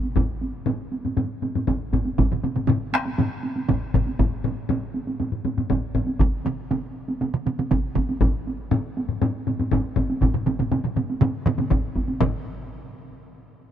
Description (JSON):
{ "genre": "japanese traditional, taiko drum ensemble", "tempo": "120 BPM", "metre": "4/4", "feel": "straight", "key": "none", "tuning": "none", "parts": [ { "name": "solo taiko drums", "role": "percussion", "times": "0.0-12.4 s", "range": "none", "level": "-27 LUFS", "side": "right 3 dB", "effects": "none" }, { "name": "taiko ensemble", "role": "percussion", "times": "0.2-12.7 s", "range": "none", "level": "-26 LUFS", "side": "left 4 dB", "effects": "none" }, { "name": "taiko ensemble", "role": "percussion", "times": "0.2-12.4 s", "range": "none", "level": "-25 LUFS", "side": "equal", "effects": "none" }, { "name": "taiko ensemble", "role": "percussion", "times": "2.2-12.7 s", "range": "none", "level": "-27 LUFS", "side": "right 4 dB", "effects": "none" } ], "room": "light reverb", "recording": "none", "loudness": "-22 LUFS", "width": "side -10 dB against mid", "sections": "0.0-12.2 A section; 12.2-13.7 B section", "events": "none", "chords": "none", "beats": "| 0.16 0.67 1.17 1.68 | 2.18 2.69 3.19 3.69 | 4.20 4.70 5.20 5.71 | 6.21 6.71 7.21 7.71 | 8.21 8.71 9.21 9.72 | 10.22 10.71 11.21 11.71 | 12.21" }